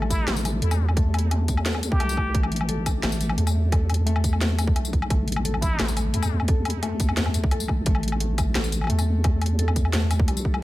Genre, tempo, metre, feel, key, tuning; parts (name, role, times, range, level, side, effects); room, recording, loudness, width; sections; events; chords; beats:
half-time drum and bass; 174 BPM; 4/4; half-time; A minor; A4 = 438 Hz
felt-muted upright piano; arpeggios; 0.0-10.6 s; G3 to A4; -30 LUFS; left 3 dB; ping-pong delay
deep soft wobble bass; bass; 0.0-10.6 s; A1 to E2; -24 LUFS; equal; chorus
drum and bass drum kit; drums; 0.0-10.6 s; hi-hat, snare drum, tambourine, woodblock; -29 LUFS; left 2 dB; overdrive
trumpet with plunger mute; melody; 0.1-2.4, 5.6-5.9 s; E4 to G4; -34 LUFS; equal; ping-pong delay
electronic kick drum; drums; 0.1-10.5 s; -22 LUFS; equal; overdrive
light reverb; -21 LUFS; side -17 dB against mid
0.0-10.6 A section
0.0 A5
0.28 0.62 | 0.97 1.31 1.66 2.00 | 2.35 2.69 3.04 3.38 | 3.73 4.07 4.41 4.76 | 5.10 5.45 5.79 6.14 | 6.48 6.83 7.17 7.52 | 7.86 8.21 8.55 8.90 | 9.24 9.59 9.93 10.28 | 10.62